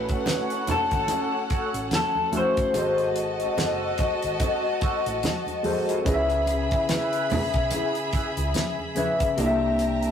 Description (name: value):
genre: lush 1970s-style soul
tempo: 72 BPM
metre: 4/4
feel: swing 58% on 16ths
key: unclear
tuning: A4 = 440 Hz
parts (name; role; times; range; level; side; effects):
- electric guitar through a small old amp; melody; 0.0-3.1 s; A4 to C5; -26 LUFS; left 3 dB; tremolo
- warm symphonic violin section; second line; 0.0-10.1 s; C#4 to B5; -28 LUFS; left 2 dB; none
- tine electric piano; accompaniment; 0.0-10.1 s; C3 to E5; -27 LUFS; left 1 dB; medium stereo tremolo
- hollow-body short-scale fingered electric bass; bass; 0.0-10.1 s; F#1 to C#2; -32 LUFS; right 1 dB; none
- mellow electric guitar; riff; 0.1-10.1 s; Bb3 to B4; -34 LUFS; right 3 dB; wah, spring reverb
- damped 70s drum kit; drums; 0.1-10.1 s; hi-hat, kick drum, snare drum; -28 LUFS; right 1 dB; none
- congas; percussion; 0.3-9.6 s; none; -32 LUFS; right 3 dB; none
room: wet studio reverb, RT60 0.6 s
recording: rough rehearsal-room recording, tube saturation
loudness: -22 LUFS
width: side -8 dB against mid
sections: 0.0-10.1 A section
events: none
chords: 0.0 A6; 2.7 G#7b9; 6.1 C#m7; 9.4 C13